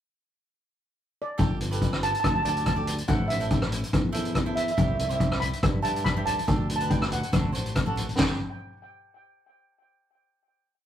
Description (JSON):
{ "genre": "calypso", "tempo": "141 BPM", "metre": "4/4", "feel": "swing 54% on 16ths", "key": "G major", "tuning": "A4 = 442 Hz", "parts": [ { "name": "steel pan", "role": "melody", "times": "1.2-8.4 s", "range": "D5 to B5", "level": "-30 LUFS", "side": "right 2 dB", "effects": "tape echo" }, { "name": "cavaquinho", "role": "accompaniment", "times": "1.4-8.4 s", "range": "D4 to D5", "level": "-36 LUFS", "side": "right 2 dB", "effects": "none" }, { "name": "modern bright fingered electric bass", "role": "bass", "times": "1.4-8.4 s", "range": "G1 to G2", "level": "-31 LUFS", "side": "equal", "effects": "none" }, { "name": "street-band drum kit", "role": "drums", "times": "1.4-8.3 s", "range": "hi-hat, kick drum, ride cymbal, rim click, snare drum", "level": "-25 LUFS", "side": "equal", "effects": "none" }, { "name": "congas", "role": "percussion", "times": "5.1-8.4 s", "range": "none", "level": "-39 LUFS", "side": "equal", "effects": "none" } ], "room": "moderate small room reverb, RT60 0.5 s", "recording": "rough rehearsal-room recording", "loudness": "-23 LUFS", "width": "side -10 dB against mid", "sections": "0.0-1.4 pickup bar; 1.4-8.2 verse; 8.2-9.9 final chord", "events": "none", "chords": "0.0 N.C.; 1.4 Gsus2; 3.1 Am; 4.8 C; 6.5 Dsus4; 7.3 D; 8.2 G", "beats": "0.12 0.54 0.97 | 1.39 1.81 2.23 2.66 | 3.08 3.50 3.93 4.35 | 4.77 5.20 5.62 6.05 | 6.48 6.90 7.33 7.76 | 8.18" }